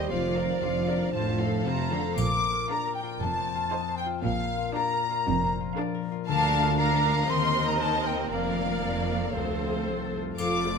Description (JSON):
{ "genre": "cinematic, playful, whimsical film cue", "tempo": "117 BPM", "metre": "4/4", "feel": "straight", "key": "Bb major", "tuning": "A4 = 440 Hz", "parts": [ { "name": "warm studio violin section", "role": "melody", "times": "0.0-10.8 s", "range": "C5 to A5", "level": "-36 LUFS", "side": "left 2 dB", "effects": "none" }, { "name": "warm studio violin section", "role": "second line", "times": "0.0-10.8 s", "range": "A4 to D6", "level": "-34 LUFS", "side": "left 4 dB", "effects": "none" }, { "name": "dark bassoon", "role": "accompaniment", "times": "0.0-1.9 s", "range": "F3 to G3", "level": "-32 LUFS", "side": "right 5 dB", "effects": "none" }, { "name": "warm studio viola section", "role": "accompaniment", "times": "0.0-10.8 s", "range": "F3 to C5", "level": "-33 LUFS", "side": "right 2 dB", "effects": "none" }, { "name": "concert harp", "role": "arpeggios", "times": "0.0-10.8 s", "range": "F2 to Eb5", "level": "-32 LUFS", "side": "left 11 dB", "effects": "none" }, { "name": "rich studio cello section", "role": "bass", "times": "0.0-10.8 s", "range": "C2 to D3", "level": "-32 LUFS", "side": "right 3 dB", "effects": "none" }, { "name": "warm studio double bass section", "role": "bass", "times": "0.0-10.8 s", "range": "F1 to Eb2", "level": "-33 LUFS", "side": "right 4 dB", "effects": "none" }, { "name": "mellow hollow concert flute", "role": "second line", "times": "1.7-10.8 s", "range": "F5 to D6", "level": "-30 LUFS", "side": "left 1 dB", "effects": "none" }, { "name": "triangle", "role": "percussion", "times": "2.2-3.2, 10.4-10.8 s", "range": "none", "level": "-45 LUFS", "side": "left 5 dB", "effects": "none" } ], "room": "moderate concert hall reverb, RT60 2.2 s", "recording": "none", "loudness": "-24 LUFS", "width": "side -5 dB against mid", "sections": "0.0-2.2 A section; 2.2-10.8 B section", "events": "none", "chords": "0.1 Bb/F; 1.1 F; 2.2 Bb; 3.2 F7; 4.2 Bb; 6.3 Bb/D; 7.3 Cm7/Eb; 8.3 Bb/F; 9.4 F" }